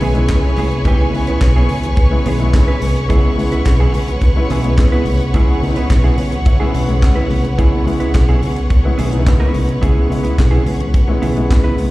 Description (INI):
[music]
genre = disco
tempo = 107 BPM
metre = 4/4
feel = straight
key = unclear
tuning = A4 = 441 Hz
[part]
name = dark concert grand piano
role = accompaniment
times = 0.0-11.9 s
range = C#3 to F#5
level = -20 LUFS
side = left 2 dB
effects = slapback echo
[part]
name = mellow electric guitar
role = accompaniment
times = 0.0-11.8 s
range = B3 to B4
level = -23 LUFS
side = right 4 dB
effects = slapback echo
[part]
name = clear symphonic string section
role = sustained chords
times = 0.0-11.9 s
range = B4 to C#6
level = -25 LUFS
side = equal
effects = none
[part]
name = fingered electric bass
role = bass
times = 0.0-11.9 s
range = B1 to C#2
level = -16 LUFS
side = equal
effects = none
[part]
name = tight funk drum kit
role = drums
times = 0.0-11.9 s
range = handclaps, hi-hat, kick drum, snare drum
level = -15 LUFS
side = equal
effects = none
[part]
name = congas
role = percussion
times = 0.0-11.9 s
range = none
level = -29 LUFS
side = left 4 dB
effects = none
[sound]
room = little or no reverb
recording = live gig heard through the venue's PA, recital hall reverb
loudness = -12 LUFS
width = side -18 dB against mid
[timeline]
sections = 0.0-11.9 A section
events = grand piano fill 5.9-7.6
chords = 0.0 C#m7